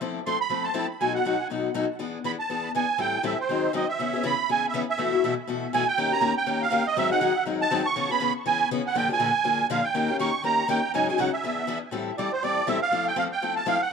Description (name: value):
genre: jazz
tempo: 242 BPM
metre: 4/4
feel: swing 56% on 8ths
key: unclear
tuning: A4 = 440 Hz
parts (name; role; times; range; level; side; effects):
- picked steel-string acoustic guitar; accompaniment; 0.0-13.8 s; G#2 to A#4; -27 LUFS; left 6 dB; none
- musette accordion; melody; 0.3-13.9 s; C5 to C#6; -25 LUFS; right 5 dB; tape echo
room: moderate club reverb, RT60 0.8 s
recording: dark, warm production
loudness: -23 LUFS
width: side -6 dB against mid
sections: 0.0-4.0 A section; 4.0-11.9 B section; 11.9-13.9 A section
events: none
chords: 0.0 Fmaj7; 1.0 B7; 2.0 E7; 3.0 Am7; 3.5 G#7; 4.0 C#m7; 5.0 B7sus4; 6.0 D#7; 7.0 G#7b9; 8.0 C#m7; 8.9 A#7; 9.9 D#7; 10.9 G#7sus4; 11.4 E7; 11.9 Am7; 12.9 Fmaj7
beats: | 0.00 0.25 0.50 0.75 | 1.00 1.25 1.49 1.74 | 1.99 2.24 2.49 2.74 | 2.98 3.23 3.48 3.73 | 3.98 4.23 4.47 4.72 | 4.97 5.22 5.47 5.72 | 5.96 6.21 6.46 6.71 | 6.96 7.21 7.46 7.71 | 7.95 8.20 8.45 8.70 | 8.95 9.20 9.44 9.69 | 9.94 10.19 10.44 10.68 | 10.93 11.18 11.43 11.68 | 11.92 12.17 12.42 12.67 | 12.91 13.16 13.41 13.66 | 13.91